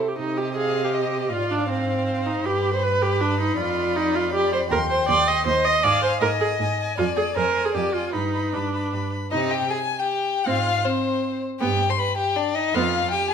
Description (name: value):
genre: quick classical-period movement for string quartet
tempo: 158 BPM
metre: 3/4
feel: straight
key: C minor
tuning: A4 = 444 Hz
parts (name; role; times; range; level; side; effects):
- clear viola; accompaniment; 0.0-12.9 s; B3 to Eb5; -22 LUFS; right 2 dB; none
- rich violin; second line; 0.2-13.3 s; C4 to C6; -30 LUFS; equal; none
- clear cello; bass; 0.2-13.1 s; Eb2 to C3; -28 LUFS; right 4 dB; none
- warm violin; melody; 0.6-13.3 s; B4 to C6; -26 LUFS; left 7 dB; none
room: moderate large studio reverb, RT60 1.4 s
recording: minimal, uncompressed stereo recording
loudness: -20 LUFS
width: side -7 dB against mid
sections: 0.2-9.3 A section; 9.3-13.3 A section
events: none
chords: 0.2 Cm; 1.3 Fm/Ab; 2.5 G; 3.6 G7b13/F; 4.7 Cm/Eb; 5.8 Ab5; 7.0 Fm; 8.1 G; 9.3 Cm; 10.5 Fm/Ab; 11.6 G; 12.7 Fsus2